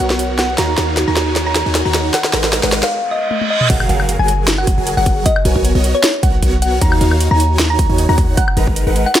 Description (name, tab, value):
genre	future bass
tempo	154 BPM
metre	4/4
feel	swing 54% on 16ths, half-time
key	F# major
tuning	A4 = 444 Hz
part	thumb-piano-like synth pluck	melody	0.0-9.2 s	C#5 to A#5	-20 LUFS	left 1 dB	chorus, phaser, cassette tape, sidechain pumping, tape echo
part	ethereal airy pad	sustained chords	0.0-2.9 s	D#4 to C#5	-32 LUFS	right 1 dB	none
part	supersaw chords	riff	0.0-9.1 s	D#3 to A#5	-20 LUFS	right 1 dB	phaser, sidechain pumping
part	warm 808-style bass	bass	0.0-9.1 s	F#1 to D#2	-17 LUFS	equal	sidechain pumping
part	trap drum kit	drums	0.0-9.2 s	crash cymbal, hi-hat, snare drum, toms, woodblock	-17 LUFS	equal	studio reverb
part	riser, reverse cymbal and impact	sound effects	0.8-5.3 s	none	-24 LUFS	right 2 dB	none
part	electronic kick drum	drums	3.7-8.7 s	none	-16 LUFS	equal	studio reverb
room	light reverb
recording	none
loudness	-12 LUFS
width	side -11 dB against mid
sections	0.0-3.7 A section; 3.7-9.2 B section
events	build-up 0.0-3.7; drum fill 0.0-2.9, 3.3-3.7; reverse cymbal 2.9-3.7; drop 3.7-9.2; impact 3.7-5.3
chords	0.0 Bmaj7; 0.6 D#m7; 2.1 G#m9; 3.7 F#maj7; 5.3 Bmaj7; 6.8 D#m7; 8.4 G#m9